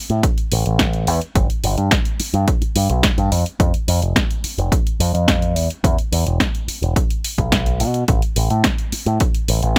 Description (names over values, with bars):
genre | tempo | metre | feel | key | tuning
nu-disco, nu disco | 107 BPM | 4/4 | straight | unclear | A4 = 439 Hz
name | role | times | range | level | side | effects
picked electric bass with an envelope filter | bass | 0.1-9.8 s | E1 to B2 | -20 LUFS | equal | tube saturation
house drum kit | drums | 0.1-9.8 s | hi-hat, snare drum | -24 LUFS | equal | none
electronic kick drum | drums | 0.2-9.8 s | none | -22 LUFS | equal | none
room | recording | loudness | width
little or no reverb | none | -18 LUFS | mono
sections
0.0-9.8 A section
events
none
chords
none